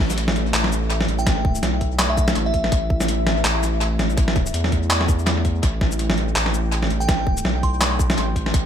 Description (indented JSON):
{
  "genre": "half-time drum and bass",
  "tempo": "165 BPM",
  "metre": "4/4",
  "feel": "swing 57% on 16ths, half-time",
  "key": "unclear",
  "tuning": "A4 = 442 Hz",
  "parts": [
    { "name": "dark analog pad", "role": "sustained chords", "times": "0.0-8.7 s", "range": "A3 to G5", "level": "-29 LUFS", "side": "left 1 dB", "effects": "chorus, sidechain pumping" },
    { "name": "saturated sub bass", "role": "bass", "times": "0.0-8.7 s", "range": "A1 to E2", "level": "-23 LUFS", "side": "equal", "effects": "tube saturation" },
    { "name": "boom bap sampler-style drum kit", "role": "drums", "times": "0.1-8.6 s", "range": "handclaps, hi-hat, shaker, snare drum", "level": "-22 LUFS", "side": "equal", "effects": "tape echo" },
    { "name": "glassy synth bell", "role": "melody", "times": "1.2-3.0, 7.0-8.1 s", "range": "E5 to C6", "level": "-28 LUFS", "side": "equal", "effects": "chorus, tape echo" },
    { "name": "electronic kick drum", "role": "drums", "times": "1.3-8.6 s", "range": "none", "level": "-21 LUFS", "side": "equal", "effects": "none" }
  ],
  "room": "light reverb",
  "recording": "echo-heavy mix",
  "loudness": "-18 LUFS",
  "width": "side -9 dB against mid",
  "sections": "0.0-8.7 A section",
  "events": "none",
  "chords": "0.0 A5"
}